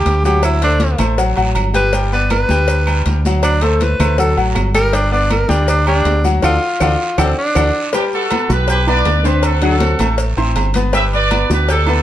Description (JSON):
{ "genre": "latin, salsa", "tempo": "160 BPM", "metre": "4/4", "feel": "straight", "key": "G major", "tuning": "A4 = 445 Hz", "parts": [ { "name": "breathy tenor saxophone", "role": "melody", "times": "0.0-7.9 s", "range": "C4 to B4", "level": "-17 LUFS", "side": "equal", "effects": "plate reverb" }, { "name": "bright grand piano", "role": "accompaniment", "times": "0.0-12.0 s", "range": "F#3 to G6", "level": "-20 LUFS", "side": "left 3 dB", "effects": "none" }, { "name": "deep dub fingered electric bass", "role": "bass", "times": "0.1-12.0 s", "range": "G1 to D2", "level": "-16 LUFS", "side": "equal", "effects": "none" }, { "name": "congas", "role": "percussion", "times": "0.1-12.0 s", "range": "none", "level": "-24 LUFS", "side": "left 2 dB", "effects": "none" }, { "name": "cowbell", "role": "percussion", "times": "0.1-11.9 s", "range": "none", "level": "-25 LUFS", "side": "left 3 dB", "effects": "none" }, { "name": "guiro", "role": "percussion", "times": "0.1-12.0 s", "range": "none", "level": "-32 LUFS", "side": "right 5 dB", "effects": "none" }, { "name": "maracas", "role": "percussion", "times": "0.1-12.0 s", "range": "none", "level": "-35 LUFS", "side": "left 5 dB", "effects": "none" }, { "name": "agogo bells and timbales", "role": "percussion", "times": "0.4-12.0 s", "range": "none", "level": "-25 LUFS", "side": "right 8 dB", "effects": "none" }, { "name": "claves", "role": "percussion", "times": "0.4-7.6 s", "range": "none", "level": "-29 LUFS", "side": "right 3 dB", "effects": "none" }, { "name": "brilliant horn section", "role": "melody", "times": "7.9-12.0 s", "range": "D4 to E5", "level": "-18 LUFS", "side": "right 1 dB", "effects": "none" }, { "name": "hollow-body jazz guitar", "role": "second line", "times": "7.9-12.0 s", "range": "C4 to B4", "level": "-23 LUFS", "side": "left 1 dB", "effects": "none" } ], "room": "moderate studio reverb, RT60 0.7 s", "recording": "dark, warm production", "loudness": "-12 LUFS", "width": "side -12 dB against mid", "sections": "0.0-7.9 A section; 7.9-12.0 B section", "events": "tenor saxophone solo 0.0-7.9; band accent 6.4-7.9; drum fill 6.8-7.9", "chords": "0.4 D7; 1.9 G; 3.4 D7; 4.9 G; 6.4 D; 7.9 G; 9.4 D7; 10.9 G", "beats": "0.06 | 0.44 0.81 1.19 1.56 | 1.94 2.31 2.69 3.06 | 3.44 3.81 4.18 4.56 | 4.93 5.31 5.68 6.06 | 6.43 6.81 7.19 7.56 | 7.94 8.31 8.69 9.06 | 9.44 9.81 10.19 10.56 | 10.94 11.31 11.69" }